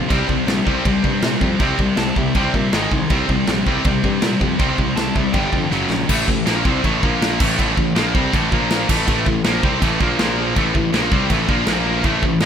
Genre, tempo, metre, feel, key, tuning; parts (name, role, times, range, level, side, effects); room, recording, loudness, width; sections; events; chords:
heavy metal; 161 BPM; 4/4; straight; A phrygian; A4 = 440 Hz
dark symphonic string section; sustained chords; 0.0-6.1, 12.0-12.5 s; C#3 to G#5; -36 LUFS; equal
heavy high-gain guitar; riff; 0.0-12.5 s; F#2 to C4; -22 LUFS; left 11 dB; distortion
heavy high-gain guitar; riff; 0.0-12.5 s; F#2 to C4; -23 LUFS; right 2 dB; distortion
high-gain distorted guitar; riff; 0.0-12.5 s; F#2 to C4; -24 LUFS; right 11 dB; distortion
fuzz picked electric bass; bass; 0.0-12.5 s; F#1 to Bb2; -24 LUFS; equal; overdrive
big rock drum kit; drums; 0.1-12.5 s; crash cymbal, kick drum, snare drum; -20 LUFS; equal
high-gain lead guitar; melody; 2.0-5.6 s; E5 to A5; -32 LUFS; left 1 dB; distortion, tape echo
little or no reverb; rough home demo mix; -15 LUFS; side -8 dB against mid
0.0-6.1 A section; 6.1-12.5 B section
drum fill 5.7-6.1
0.1 C; 2.7 G#5; 3.1 C; 5.4 G5; 5.7 F#5; 6.1 Am; 7.0 Bb5; 7.4 Am; 8.5 Bb5; 8.9 Am; 10.2 Bb5; 10.6 Am; 11.7 Bb5